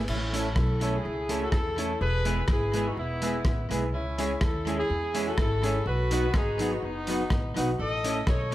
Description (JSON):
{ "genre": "ska", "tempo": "124 BPM", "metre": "4/4", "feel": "swing 54% on 8ths", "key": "unclear", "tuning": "A4 = 439 Hz", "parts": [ { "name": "upright bass", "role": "bass", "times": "0.0-8.5 s", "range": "E1 to E2", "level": "-31 LUFS", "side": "equal", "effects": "none" }, { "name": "warm horn section", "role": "melody", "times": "0.1-8.5 s", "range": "B3 to D#5", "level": "-30 LUFS", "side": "left 1 dB", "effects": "tape echo" }, { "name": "crunchy breakbeat drum kit", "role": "drums", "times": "0.1-8.5 s", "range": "crash cymbal, hi-hat, kick drum, rim click", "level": "-29 LUFS", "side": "equal", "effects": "tape echo" }, { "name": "clean electric guitar", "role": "accompaniment", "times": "0.3-8.5 s", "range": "F#3 to A4", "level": "-34 LUFS", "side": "right 4 dB", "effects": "none" }, { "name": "bright upright piano", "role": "stabs", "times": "0.3-8.5 s", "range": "C#4 to C#5", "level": "-35 LUFS", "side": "left 2 dB", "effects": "none" } ], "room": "moderate large studio reverb, RT60 0.9 s", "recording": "none", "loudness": "-25 LUFS", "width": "side -14 dB against mid", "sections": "0.1-8.5 A section", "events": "none", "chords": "0.1 A; 2.0 E; 3.9 C#m; 5.9 B; 7.8 A" }